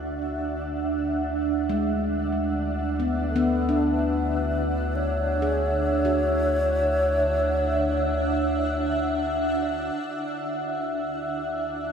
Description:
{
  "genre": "ambient",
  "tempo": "free time",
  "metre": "none",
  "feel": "none",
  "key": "D lydian",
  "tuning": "A4 = 441 Hz",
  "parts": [
    { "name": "wooden-headed alto flute", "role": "melody", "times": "0.0-9.1 s", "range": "F#4 to C#5", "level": "-28 LUFS", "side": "left 1 dB", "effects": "dub echo" },
    { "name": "granular cloud pad", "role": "sustained chords", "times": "0.0-11.9 s", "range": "D4 to A5", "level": "-26 LUFS", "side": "right 2 dB", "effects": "built-in reverb" },
    { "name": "warm sub bass", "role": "bass", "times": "0.0-11.9 s", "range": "D2", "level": "-30 LUFS", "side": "left 1 dB", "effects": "none" },
    { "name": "glass harmonica", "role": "texture", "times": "0.0-11.9 s", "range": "D5 to E5", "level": "-37 LUFS", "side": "left 2 dB", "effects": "none" },
    { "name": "handpan", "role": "arpeggios", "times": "1.7-8.3 s", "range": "G#3 to G#4", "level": "-28 LUFS", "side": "left 3 dB", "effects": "dub echo" }
  ],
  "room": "wet echo chamber reverb, RT60 2.5 s",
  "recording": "echo-heavy mix",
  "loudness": "-23 LUFS",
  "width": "side -7 dB against mid",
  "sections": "0.0-10.0 A section; 10.0-11.9 B section",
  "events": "fade-in on sub bass 0.0-10.0; fade-in on alto flute 0.0-10.0; filter sweep on ambient pad 0.0-10.0",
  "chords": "0.0 Dmaj7; 10.0 Dadd9"
}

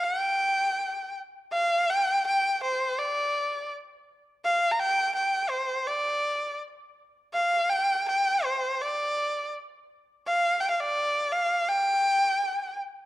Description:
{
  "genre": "chinese traditional",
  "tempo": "83 BPM",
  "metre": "2/4",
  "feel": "rubato",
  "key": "unclear",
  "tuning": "A4 = 440 Hz",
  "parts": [
    { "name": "clear erhu", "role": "solo", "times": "0.0-12.8 s", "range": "C5 to Bb5", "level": "-24 LUFS", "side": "equal", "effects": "none" }
  ],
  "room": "moderate concert hall reverb, RT60 1.8 s",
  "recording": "dark, warm production",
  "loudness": "-24 LUFS",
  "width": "side -15 dB against mid",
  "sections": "0.0-1.5 A section; 1.5-13.1 B section",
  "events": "none",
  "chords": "none"
}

